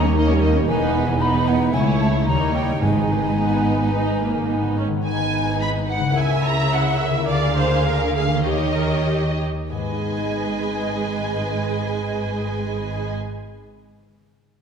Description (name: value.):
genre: classical, dramatic, fast romantic movement for symphony orchestra.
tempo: 90-115 BPM.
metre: 4/4.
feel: rubato.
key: G# minor.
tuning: A4 = 440 Hz.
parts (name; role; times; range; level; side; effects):
warm symphonic violin section; melody; 0.0-13.1 s; B4 to B5; -28 LUFS; equal; none.
dark symphonic violin section; second line; 0.0-13.1 s; C#4 to D#5; -28 LUFS; left 1 dB; none.
hollow concert flute; second line; 0.0-4.7 s; F#5 to B5; -27 LUFS; equal; none.
rich studio viola section; accompaniment; 0.0-13.1 s; G3 to E5; -26 LUFS; right 2 dB; none.
concert harp; arpeggios; 0.0-13.6 s; G#2 to B5; -24 LUFS; left 3 dB; none.
bright symphonic double bass section; bass; 0.0-13.1 s; E1 to D#2; -27 LUFS; right 3 dB; none.
warm symphonic cello section; bass; 0.0-13.1 s; C#2 to D#3; -26 LUFS; right 3 dB; none.
timpani; percussion; 2.8-3.6 s; G#2; -26 LUFS; right 2 dB; none.
room: wet scoring stage reverb, RT60 1.7 s.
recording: minimal, uncompressed stereo recording.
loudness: -18 LUFS.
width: side -7 dB against mid.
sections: 0.0-5.0 A section; 5.0-9.7 B section; 9.7-14.6 C section.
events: slowing down 3.9-9.7.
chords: 0.0 D#7; 0.7 Emaj7; 1.7 A/C#; 2.3 D#7; 2.8 G#m; 6.1 A#dim/C#; 7.3 A#7/D; 8.4 D#7; 9.7 G#m.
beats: 0.16 | 0.68 1.20 1.73 2.27 | 2.82 3.38 3.93 4.48 | 5.04 5.59 6.15 6.71 | 7.28 7.85 8.44 9.07 | 9.72 10.34 10.98 11.61 | 12.23 12.86 13.48.